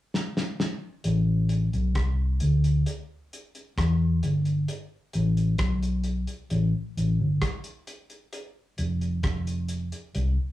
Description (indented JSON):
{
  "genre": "roots reggae",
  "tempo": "66 BPM",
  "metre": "4/4",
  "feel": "straight",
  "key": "unclear",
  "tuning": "A4 = 440 Hz",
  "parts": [
    { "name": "cloth-damped thuddy drum kit", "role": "drums", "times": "0.1-10.4 s", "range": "hi-hat, kick drum, rim click, snare drum", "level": "-31 LUFS", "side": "equal", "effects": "none" },
    { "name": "vintage muted fingered electric bass", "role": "bass", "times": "1.1-10.4 s", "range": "F1 to E2", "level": "-23 LUFS", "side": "equal", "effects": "none" }
  ],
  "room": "moderate studio reverb, RT60 0.5 s",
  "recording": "rough rehearsal-room recording, tube saturation, studio reverb",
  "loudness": "-24 LUFS",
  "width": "side -15 dB against mid",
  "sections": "0.0-1.0 A section; 1.0-4.7 B section; 4.7-10.5 C section",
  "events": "drum fill 0.1-1.0",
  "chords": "none"
}